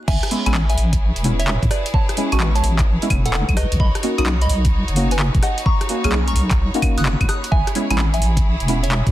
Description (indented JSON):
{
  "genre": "UK garage, two-step garage",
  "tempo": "129 BPM",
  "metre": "4/4",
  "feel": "swing 65% on 16ths",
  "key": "A major",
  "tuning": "A4 = 440 Hz",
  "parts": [
    { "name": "soft synth bell", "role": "melody", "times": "0.1-9.0 s", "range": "A4 to F#6", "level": "-26 LUFS", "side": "right 1 dB", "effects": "chorus, phaser, ping-pong delay" },
    { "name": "clear studio violin section", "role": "sustained chords", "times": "0.1-9.1 s", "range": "D#4 to B5", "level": "-31 LUFS", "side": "equal", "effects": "sidechain pumping" },
    { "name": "deep soft wobble bass", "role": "bass", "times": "0.1-9.1 s", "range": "E1 to A2", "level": "-18 LUFS", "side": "equal", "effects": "chorus" },
    { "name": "electronic kick drum", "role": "drums", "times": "0.1-9.1 s", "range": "none", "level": "-19 LUFS", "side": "equal", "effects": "none" },
    { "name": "garage drum kit", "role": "drums", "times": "0.1-9.1 s", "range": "claves, crash cymbal, handclaps, hi-hat, rim click", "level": "-24 LUFS", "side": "equal", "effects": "soft clipping on snare" },
    { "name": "deep mellow chord stab", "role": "stabs", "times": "0.3-8.8 s", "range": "G#3 to G#4", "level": "-24 LUFS", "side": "equal", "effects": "chorus, phaser, cassette tape, digital delay" }
  ],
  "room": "little or no reverb",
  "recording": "dense, heavily limited modern master, vinyl crackle",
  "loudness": "-16 LUFS",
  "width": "side -14 dB against mid",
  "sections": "0.1-9.1 A section",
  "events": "drop 0.1-9.1",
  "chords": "0.1 Amaj9; 3.6 Bmaj9; 7.5 Amaj9"
}